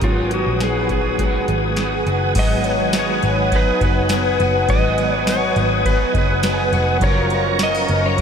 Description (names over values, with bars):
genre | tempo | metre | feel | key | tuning
dream pop | 103 BPM | 4/4 | straight | G# dorian | A4 = 444 Hz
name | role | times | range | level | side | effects
clean lap steel guitar | melody | 0.0-8.2 s | E#4 to D#5 | -22 LUFS | left 1 dB | diffuse ambient delay
electric guitar at the edge of break-up | accompaniment | 0.0-8.2 s | G#2 to A#4 | -25 LUFS | right 5 dB | harmonic tremolo, analog chorus
tonewheel organ | sustained chords | 0.0-8.2 s | A#4 to D#6 | -22 LUFS | left 1 dB | chorus vibrato, slow rotary speaker
fingerpicked twelve-string acoustic guitar | arpeggios | 0.0-8.2 s | E#3 to F#4 | -26 LUFS | left 3 dB | wide subtle chorus, diffuse ambient delay
vintage muted picked electric bass | bass | 0.0-8.2 s | E#1 to A#1 | -22 LUFS | equal | none
booming analog drum machine | drums | 0.0-8.2 s | crash cymbal, hi-hat, kick drum, ride cymbal, snare drum, tambourine | -22 LUFS | equal | overdrive
felt-muted upright piano | texture | 0.6-8.2 s | B4 to F#6 | -31 LUFS | left 2 dB | none
room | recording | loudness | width
wet huge ambient reverb, RT60 7.8 s | dreamy mix soaked in reverb | -15 LUFS | side -7 dB against mid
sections
0.0-2.4 A section; 2.4-8.2 B section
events
none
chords
0.0 G#m7; 7.0 F#maj7